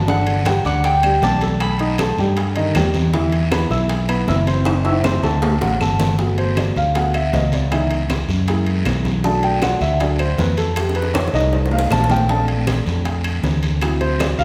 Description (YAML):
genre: Afro-Cuban jazz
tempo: 157 BPM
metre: 4/4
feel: straight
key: E minor, G major from 6.2 s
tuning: A4 = 439 Hz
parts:
  - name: concert harp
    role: melody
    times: 0.0-3.0 s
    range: F#5 to B5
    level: -23 LUFS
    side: equal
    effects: none
  - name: fingered electric bass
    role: bass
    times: 0.0-14.4 s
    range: F#1 to G2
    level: -22 LUFS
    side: equal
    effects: none
  - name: dark concert grand piano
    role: accompaniment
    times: 0.1-14.4 s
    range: D3 to E6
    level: -23 LUFS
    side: equal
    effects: none
  - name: bongos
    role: percussion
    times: 0.1-14.4 s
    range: none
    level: -32 LUFS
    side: equal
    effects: none
  - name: congas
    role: percussion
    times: 0.1-14.4 s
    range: none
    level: -28 LUFS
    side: equal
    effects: none
  - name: guiro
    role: percussion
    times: 0.1-14.4 s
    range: none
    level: -34 LUFS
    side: equal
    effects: none
  - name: timbales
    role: percussion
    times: 0.3-14.4 s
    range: none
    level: -30 LUFS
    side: equal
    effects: none
  - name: claves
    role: percussion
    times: 0.5-14.4 s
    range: none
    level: -37 LUFS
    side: equal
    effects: none
room: wet concert hall reverb, RT60 2.1 s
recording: recorded in a church or concert hall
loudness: -18 LUFS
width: mono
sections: 0.0-6.2 A section; 6.2-14.4 B section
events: drum fill 4.7-6.2, 10.8-12.3; grand piano solo 6.2-14.4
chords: 0.1 Gmaj9; 1.6 Baug7; 3.1 Esus2; 4.7 F#m7b5; 5.4 D; 6.2 Gmaj7; 7.7 C#m7; 8.5 F#7; 9.2 Bm7; 10.8 F7; 12.3 Bbmaj7; 13.8 D7